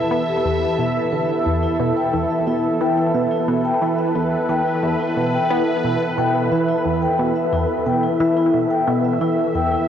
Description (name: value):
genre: ambient, sequencer-driven space music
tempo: 89 BPM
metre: 4/4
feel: straight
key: E minor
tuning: A4 = 440 Hz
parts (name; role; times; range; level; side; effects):
- sweeping resonant pad; sustained chords; 0.0-9.9 s; E3 to E5; -21 LUFS; right 1 dB; chorus
- wind-like tuned noise texture; texture; 0.0-9.9 s; B3 to E5; -28 LUFS; right 1 dB; built-in reverb
- tight sequenced synth; riff; 0.1-9.8 s; E2 to B3; -22 LUFS; equal; chorus, phaser, ping-pong delay
- vibraphone with soft mallets; arpeggios; 0.3-9.9 s; E4 to G5; -23 LUFS; left 2 dB; auto-pan, ping-pong delay
room: wet huge ambient reverb, RT60 8.2 s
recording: worn, warbling old tape, cassette tape, warbly pitch drift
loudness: -17 LUFS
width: side -9 dB against mid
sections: 0.0-9.9 A section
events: none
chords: 0.0 Em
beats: 0.11 0.79 | 1.46 2.13 2.81 3.48 | 4.16 4.83 5.50 6.18 | 6.85 7.53 8.20 8.88 | 9.55